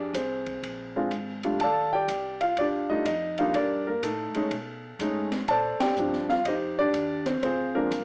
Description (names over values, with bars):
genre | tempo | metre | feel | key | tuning
jazz piano trio | 124 BPM | 4/4 | swing 66% on 8ths | Bb major | A4 = 439 Hz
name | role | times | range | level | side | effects
warm grand piano | melody | 0.0-8.0 s | F3 to A5 | -25 LUFS | equal | none
upright bass | bass | 0.0-8.0 s | Ab1 to B2 | -40 LUFS | equal | none
open jazz drum kit | drums | 0.1-8.0 s | hi-hat, kick drum, ride cymbal, snare drum | -36 LUFS | equal | none
room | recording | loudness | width
moderate large studio reverb, RT60 1.1 s | worn, warbling old tape, cassette tape, warbly pitch drift, small speaker sound | -24 LUFS | side -34 dB against mid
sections
0.0-8.0 A section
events
band accent 5.7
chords
0.0 Fm; 0.6 Bb7; 1.6 Ebmaj9#11; 3.5 Ebmaj7#11/G; 4.5 B13; 5.5 Bb69; 7.4 Dm7b5